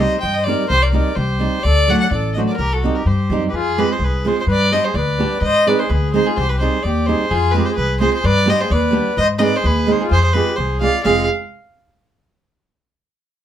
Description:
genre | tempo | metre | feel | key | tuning
balkan folk, Balkan wedding band | 128 BPM | 2/4 | swing 54% on 16ths | C dorian sharp4, F dorian sharp4 from 3.5 s | A4 = 438 Hz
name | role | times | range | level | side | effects
warm fiddle | melody | 0.0-11.3 s | Ab4 to G5 | -19 LUFS | equal | none
accordion | second line | 0.0-11.3 s | C4 to Eb5 | -24 LUFS | left 3 dB | none
flamenco guitar | accompaniment | 0.0-11.3 s | F#3 to Ab4 | -20 LUFS | right 4 dB | none
upright bass | bass | 0.0-11.3 s | F1 to Ab2 | -19 LUFS | left 1 dB | none
room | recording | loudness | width
moderate studio reverb, RT60 0.6 s | band playing live in one room | -14 LUFS | side -10 dB against mid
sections
0.0-3.5 A section; 3.5-11.1 B section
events
none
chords
0.0 Cm; 1.7 D; 2.6 Cm; 3.5 Fm; 4.5 G; 5.4 Ab; 6.4 Cm; 7.3 Fm; 8.2 G; 9.2 Ab; 10.1 Fm

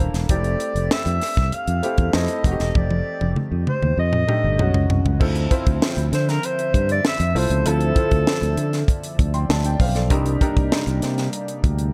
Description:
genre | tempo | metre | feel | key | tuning
polished 1980s jazz-funk pop | 98 BPM | 4/4 | straight | unclear | A4 = 440 Hz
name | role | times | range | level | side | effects
breathy alto saxophone | melody | 0.0-8.9 s | A4 to F5 | -27 LUFS | equal | delay
clear grand piano | accompaniment | 0.0-11.9 s | G3 to C6 | -30 LUFS | equal | lush chorus
fingered electric bass | bass | 0.0-11.9 s | Eb1 to D3 | -24 LUFS | equal | none
tight funk drum kit | drums | 0.1-11.9 s | crash cymbal, hi-hat, kick drum, snare drum, toms | -24 LUFS | equal | none
hollow soft pad | sustained chords | 5.6-11.9 s | C3 to E5 | -33 LUFS | equal | chorus
room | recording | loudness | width
light reverb, small room ambience | dark, warm production | -20 LUFS | mono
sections
0.0-5.2 A section; 5.2-11.9 B section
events
drum fill 2.8-5.2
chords
0.3 Fmaj9; 2.4 F13; 4.6 B6; 5.2 Dm9; 10.1 Cm9

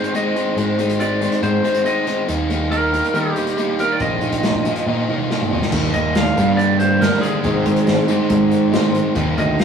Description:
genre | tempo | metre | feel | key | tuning
indie rock | 140 BPM | 4/4 | straight | Ab lydian | A4 = 440 Hz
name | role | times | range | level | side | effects
lightly driven lead guitar | melody | 0.0-9.6 s | G4 to F5 | -22 LUFS | right 2 dB | none
overdriven electric guitar | riff | 0.0-9.6 s | G2 to Eb4 | -20 LUFS | left 2 dB | spring reverb
unplugged drum kit | drums | 0.0-9.6 s | crash cymbal, hi-hat, kick drum, snare drum, toms | -23 LUFS | right 1 dB | none
growling picked electric bass | bass | 0.6-9.6 s | Ab1 to Eb3 | -21 LUFS | right 1 dB | overdrive
sludgy distorted guitar | riff | 5.7-9.6 s | G2 to Eb4 | -23 LUFS | right 5 dB | overdrive
room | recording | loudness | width
wet stone room reverb, RT60 1.3 s | rough rehearsal-room recording, tube saturation, small room ambience | -16 LUFS | side -7 dB against mid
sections
0.0-5.7 A section; 5.7-9.6 B section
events
drum fill 4.9-5.7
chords
0.0 Ab; 2.3 Eb; 4.0 Bbsus4; 5.7 Eb; 6.4 Gm; 7.5 Ab

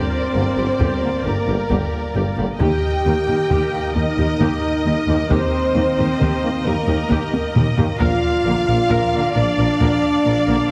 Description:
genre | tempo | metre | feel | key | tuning
cinematic, epic orchestral film score | 89 BPM (dotted quarters) | 12/8 | straight | unclear | A4 = 440 Hz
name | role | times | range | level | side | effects
rich studio violin section | melody | 0.0-10.7 s | D5 to F5 | -33 LUFS | equal | none
warm symphonic violin section | second line | 0.0-10.7 s | Bb4 to G5 | -28 LUFS | equal | none
clear symphonic viola section | accompaniment | 0.0-10.7 s | G4 to D5 | -31 LUFS | equal | none
mellow French horn section | sustained chords | 0.0-10.7 s | Bb3 to G4 | -24 LUFS | equal | none
bright trombone section | sustained chords | 0.3-10.6 s | D3 to Bb3 | -32 LUFS | equal | none
rich symphonic double bass section | bass | 0.3-10.6 s | G1 to Eb2 | -28 LUFS | equal | none
warm symphonic cello section | bass | 0.3-10.5 s | Eb2 to Bb2 | -28 LUFS | equal | none
warm tuba | bass | 0.4-10.6 s | G1 to Eb2 | -28 LUFS | equal | none
taiko ensemble | drums | 0.8-10.2 s | none | -26 LUFS | equal | none
room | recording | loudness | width
wet scoring stage reverb, RT60 1.5 s | heavily compressed radio sound | -18 LUFS | mono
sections
0.0-10.7 A section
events
drum fill 7.3-8.0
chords
0.0 Gm; 2.6 Eb; 8.0 Bb

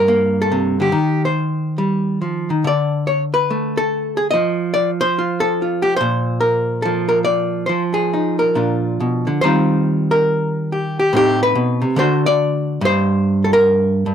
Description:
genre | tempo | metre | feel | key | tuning
solo jazz | 142 BPM | 4/4 | swing 66% on 8ths, rubato | Bb major, Eb major from 9.4 s | A4 = 440 Hz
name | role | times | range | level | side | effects
archtop guitar, miked and amplified | solo | 0.0-14.1 s | G2 to Eb5 | -15 LUFS | equal | none
room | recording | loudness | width
light reverb | dry, close 1970s-style studio recording | -15 LUFS | side -8 dB against mid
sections
0.0-9.4 A section; 9.4-14.1 B section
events
none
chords
0.0 Gm; 0.9 Ebadd9; 2.6 D5; 4.3 N.C.; 6.0 Bbmaj7; 7.7 Fm7; 8.5 Bb; 9.4 Eb69; 11.1 Adim; 12.0 D; 12.8 Gm

